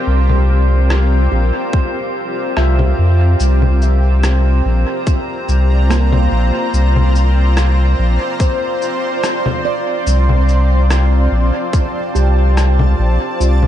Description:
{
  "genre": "ambient dub",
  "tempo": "72 BPM",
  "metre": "4/4",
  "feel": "swing 54% on 16ths",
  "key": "unclear",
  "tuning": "A4 = 440 Hz",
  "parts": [
    { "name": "granular cloud pad", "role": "sustained chords", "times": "0.0-13.7 s", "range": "C4 to Bb5", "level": "-20 LUFS", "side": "equal", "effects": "built-in reverb" },
    { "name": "handpan", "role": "arpeggios", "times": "0.0-13.7 s", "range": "Bb3 to E5", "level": "-25 LUFS", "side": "right 4 dB", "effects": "dub echo" },
    { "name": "drifting glass-harmonics texture", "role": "texture", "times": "0.0-13.7 s", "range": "C5", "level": "-27 LUFS", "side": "right 3 dB", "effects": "chorus, built-in reverb" },
    { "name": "warm sub bass", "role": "bass", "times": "0.1-13.7 s", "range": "Bb1 to F2", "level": "-12 LUFS", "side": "equal", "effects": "none" },
    { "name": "electronic congas, rim click and cabasa", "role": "drums", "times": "0.3-13.7 s", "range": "none", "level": "-24 LUFS", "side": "left 2 dB", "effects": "dub echo" },
    { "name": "electronic kick drum", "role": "drums", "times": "1.7-11.9 s", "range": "none", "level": "-15 LUFS", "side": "equal", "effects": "overdrive" }
  ],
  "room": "light reverb",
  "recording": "nothing above 11.0 kHz",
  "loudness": "-12 LUFS",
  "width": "side -11 dB against mid",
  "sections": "0.0-13.7 A section",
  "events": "none",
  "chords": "0.0 C7sus4; 3.4 Bb"
}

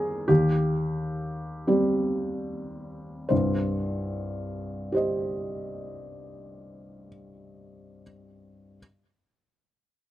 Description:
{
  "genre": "neoclassical minimalist piano",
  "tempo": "35-46 BPM (dotted quarters)",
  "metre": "6/8",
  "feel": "rubato",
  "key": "C minor",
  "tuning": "A4 = 440 Hz",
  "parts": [
    { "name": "felt-muted upright piano", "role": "solo", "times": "0.0-8.8 s", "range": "C2 to Eb5", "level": "-25 LUFS", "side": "equal", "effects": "none" }
  ],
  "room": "light reverb",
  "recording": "recorded outdoors, with no room sound",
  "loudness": "-25 LUFS",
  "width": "side -14 dB against mid",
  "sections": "0.0-3.3 A section; 3.3-6.5 B section",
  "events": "slowing down 0.0-3.3",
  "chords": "0.0 Cm/Eb; 3.3 Cm"
}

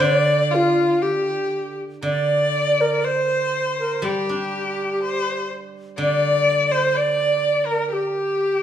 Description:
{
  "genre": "chinese traditional, Chinese chamber ensemble",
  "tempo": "61 BPM",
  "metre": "2/4",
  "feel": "rubato",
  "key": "G yu mode",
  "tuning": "A4 = 439 Hz",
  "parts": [
    { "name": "bright xiao", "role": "melody", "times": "0.0-8.6 s", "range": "F4 to D5", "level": "-21 LUFS", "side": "right 2 dB", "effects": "none" },
    { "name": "clear erhu", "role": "second line", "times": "0.0-8.6 s", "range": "F4 to D5", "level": "-23 LUFS", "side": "left 5 dB", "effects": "none" },
    { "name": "steel-string zither", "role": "accompaniment", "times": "0.0-8.6 s", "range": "D3 to D4", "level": "-27 LUFS", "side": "right 1 dB", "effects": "none" }
  ],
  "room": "moderate recital hall reverb, RT60 1.4 s",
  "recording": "small room ambience",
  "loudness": "-18 LUFS",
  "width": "side -10 dB against mid",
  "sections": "0.0-2.0 A section; 2.0-8.6 B section",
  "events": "none",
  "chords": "none"
}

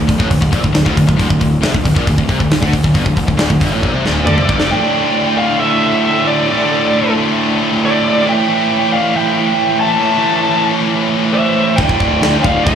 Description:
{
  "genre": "heavy metal",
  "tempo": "136 BPM",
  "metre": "4/4",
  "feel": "straight",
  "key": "unclear",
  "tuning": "A4 = 443 Hz",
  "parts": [
    { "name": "heavy high-gain guitar", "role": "riff", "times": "0.0-12.8 s", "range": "D2 to E3", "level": "-17 LUFS", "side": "left 8 dB", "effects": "distortion" },
    { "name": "tight distorted guitar", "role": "riff", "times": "0.0-12.8 s", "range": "D2 to A3", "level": "-18 LUFS", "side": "right 6 dB", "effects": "distortion, slapback echo" },
    { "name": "fuzz picked electric bass", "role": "bass", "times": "0.0-4.7, 11.8-12.8 s", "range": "D1 to D2", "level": "-18 LUFS", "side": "equal", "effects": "overdrive" },
    { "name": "tight metal drum kit", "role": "drums", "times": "0.1-4.7, 11.8-12.8 s", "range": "crash cymbal, hi-hat, kick drum, snare drum, toms", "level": "-16 LUFS", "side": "equal", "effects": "none" },
    { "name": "high-gain lead guitar", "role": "melody", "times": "4.3-12.8 s", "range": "D5 to A5", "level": "-16 LUFS", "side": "right 1 dB", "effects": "distortion, slapback echo, digital delay" },
    { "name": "smooth overdriven lead guitar", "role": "second line", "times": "4.3-12.8 s", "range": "A4 to E5", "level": "-23 LUFS", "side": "right 4 dB", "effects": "none" }
  ],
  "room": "small room reverb",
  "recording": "live gig heard through the venue's PA, club reverb",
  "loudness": "-11 LUFS",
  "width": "side -8 dB against mid",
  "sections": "0.0-4.7 A section; 4.7-12.8 B section",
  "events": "drum fill 3.8-4.7",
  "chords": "0.0 D5; 8.2 A5; 11.8 D5"
}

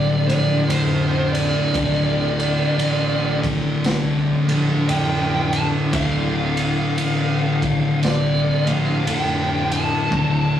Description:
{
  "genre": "stoner and doom metal",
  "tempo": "57 BPM",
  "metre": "4/4",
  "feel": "swing 61% on 8ths",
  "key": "D minor",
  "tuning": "A4 = 439 Hz",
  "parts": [
    { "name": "fuzz lead guitar", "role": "melody", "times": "0.0-10.6 s", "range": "C5 to A5", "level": "-24 LUFS", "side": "right 1 dB", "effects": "distortion" },
    { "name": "thick fuzz guitar", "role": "riff", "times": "0.0-10.6 s", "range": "D2 to D3", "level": "-21 LUFS", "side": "left 2 dB", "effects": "distortion" },
    { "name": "thick fuzz guitar", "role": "riff", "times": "0.0-10.6 s", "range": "D2 to D3", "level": "-25 LUFS", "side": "right 2 dB", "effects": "distortion" },
    { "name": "fuzz fingered electric bass", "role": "bass", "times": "0.0-10.6 s", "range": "D1 to C2", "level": "-28 LUFS", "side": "right 1 dB", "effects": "overdrive" },
    { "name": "raw garage drum kit", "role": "drums", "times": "0.3-10.4 s", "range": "kick drum, ride cymbal, snare drum", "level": "-25 LUFS", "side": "right 1 dB", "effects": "none" }
  ],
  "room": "moderate studio reverb, RT60 0.5 s",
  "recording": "rough rehearsal-room recording, tube saturation, studio reverb",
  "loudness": "-17 LUFS",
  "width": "side -10 dB against mid",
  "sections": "0.0-10.6 A section",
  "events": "drum fill 10.1-10.6",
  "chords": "0.0 Dm"
}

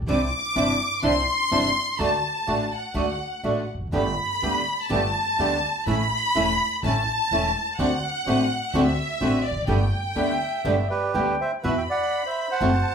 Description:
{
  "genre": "tango",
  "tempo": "125 BPM",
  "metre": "4/4",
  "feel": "rubato",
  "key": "G major",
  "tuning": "A4 = 440 Hz",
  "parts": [
    { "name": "upright bass", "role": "bass", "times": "0.0-12.8 s", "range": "E1 to E2", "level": "-29 LUFS", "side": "equal", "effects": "none" },
    { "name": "rich studio violin section", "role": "second line", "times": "0.1-12.9 s", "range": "D5 to D6", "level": "-25 LUFS", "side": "left 1 dB", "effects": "none" },
    { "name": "nylon-string guitar", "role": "accompaniment", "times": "0.1-12.7 s", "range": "B2 to G4", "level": "-25 LUFS", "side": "equal", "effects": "none" },
    { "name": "bandoneon", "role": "stabs", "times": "0.1-12.8 s", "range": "A3 to G4", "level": "-31 LUFS", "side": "right 3 dB", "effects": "none" },
    { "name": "mellow clarinet", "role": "second line", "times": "10.2-11.6 s", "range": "D5 to G5", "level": "-28 LUFS", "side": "right 1 dB", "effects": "none" },
    { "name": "bandoneon", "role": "melody", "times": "10.9-12.9 s", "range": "G4 to G5", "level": "-25 LUFS", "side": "right 3 dB", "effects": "none" }
  ],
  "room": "moderate large studio reverb, RT60 0.8 s",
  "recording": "band playing live in one room",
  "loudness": "-21 LUFS",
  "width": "side -6 dB against mid",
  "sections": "0.0-11.6 A section; 11.6-12.9 B section",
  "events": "violin section solo 0.0-11.6",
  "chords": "0.1 Cadd9; 2.0 D; 3.9 Gadd9; 5.9 A; 7.8 D7; 9.7 Gadd9; 11.6 Esus2"
}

